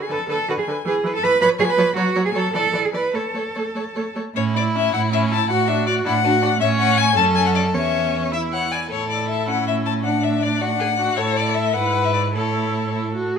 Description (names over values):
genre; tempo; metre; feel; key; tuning
quick classical-period movement for string quartet; 98-110 BPM (dotted quarters); 6/8; rubato; A major; A4 = 441 Hz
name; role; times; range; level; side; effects
rich violin; melody; 0.0-12.9 s; C#5 to B5; -23 LUFS; left 9 dB; none
warm cello; bass; 0.0-13.4 s; E2 to B4; -22 LUFS; right 5 dB; none
rich violin; second line; 0.1-13.2 s; C#4 to G#5; -25 LUFS; left 3 dB; none
clear viola; accompaniment; 0.1-13.4 s; D3 to G#4; -26 LUFS; right 2 dB; none
room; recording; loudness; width
moderate recital hall reverb, RT60 1.4 s; none; -18 LUFS; side -7 dB against mid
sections
0.0-4.4 A section; 4.4-13.4 B section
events
none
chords
0.0 Bm7/D; 0.9 E; 1.4 C#7/E#; 2.0 F#m; 2.5 E7; 3.2 A; 5.5 D/A; 6.6 A; 7.2 F#m; 7.7 C#m/E; 8.3 E; 8.9 A; 10.1 D/A; 11.2 A5; 11.7 E/G#; 12.3 A